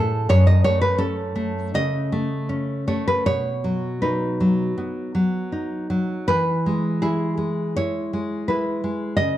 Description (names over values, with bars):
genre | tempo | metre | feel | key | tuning
romantic piece for solo classical guitar | 81 BPM | 4/4 | uneven beats, rubato | E major | A4 = 440 Hz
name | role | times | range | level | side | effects
nylon-string guitar | solo | 0.0-9.4 s | F#2 to D#5 | -20 LUFS | equal | none
room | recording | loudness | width
light reverb | dark, warm production | -20 LUFS | side -13 dB against mid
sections
0.0-9.4 A section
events
none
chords
0.3 F#m; 3.3 B; 6.3 E